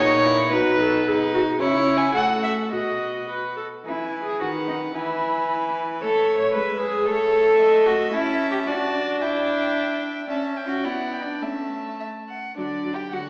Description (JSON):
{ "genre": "quick classical-period movement for string quartet", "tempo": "103-114 BPM", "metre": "2/4", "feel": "rubato", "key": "E major, D major from 8.1 s", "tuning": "A4 = 440 Hz", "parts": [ { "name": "dark violin", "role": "melody", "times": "0.0-13.3 s", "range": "B4 to A5", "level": "-29 LUFS", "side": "equal", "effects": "none" }, { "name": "rich violin", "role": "second line", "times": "0.0-13.3 s", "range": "D4 to F#5", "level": "-32 LUFS", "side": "equal", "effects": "none" }, { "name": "warm viola", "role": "accompaniment", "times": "0.0-13.2 s", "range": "D#3 to B4", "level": "-29 LUFS", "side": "equal", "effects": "none" }, { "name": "dark cello", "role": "bass", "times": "0.0-13.3 s", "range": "A2 to C#5", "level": "-26 LUFS", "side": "equal", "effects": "none" } ], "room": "wet recital hall reverb, RT60 1.6 s", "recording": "heard from further back in the room, small speaker sound", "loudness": "-23 LUFS", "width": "mono", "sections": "0.0-3.9 A section; 3.9-12.6 A section", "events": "none", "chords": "0.0 F#/A#; 0.5 B; 1.6 C#m; 2.2 F#m/A; 2.7 B; 3.9 E; 4.4 B/D#; 4.9 E; 6.0 A; 6.5 E/G#; 7.1 A; 8.1 A/C#; 8.7 D; 9.2 Em7/D; 10.3 A/C#; 10.8 Bm; 11.4 A; 12.6 D", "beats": "| 0.53 1.06 | 1.61 2.15 | 2.72 3.29 | 3.86 4.41 | 4.95 5.49 | 6.02 6.54 | 7.07 7.60 | 8.13 8.67 | 9.21 9.76 | 10.30 10.85 | 11.42 11.99 | 12.56 13.11" }